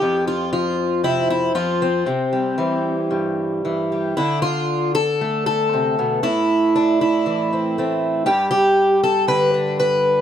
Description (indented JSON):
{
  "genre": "folk, solo fingerstyle acoustic guitar",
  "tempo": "118 BPM",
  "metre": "4/4",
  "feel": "rubato",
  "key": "unclear",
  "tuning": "A4 = 440 Hz",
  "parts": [
    { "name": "fingerpicked twelve-string acoustic guitar", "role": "solo", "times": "0.0-10.2 s", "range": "F2 to B4", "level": "-17 LUFS", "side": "equal", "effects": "none" }
  ],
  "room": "moderate studio reverb, RT60 0.6 s",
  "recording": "none",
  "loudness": "-17 LUFS",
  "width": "side -9 dB against mid",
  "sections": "0.0-4.2 A section; 4.2-10.2 B section",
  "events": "none",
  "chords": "0.0 F5; 2.1 C; 4.2 Dm; 6.2 Am; 8.3 Gadd9"
}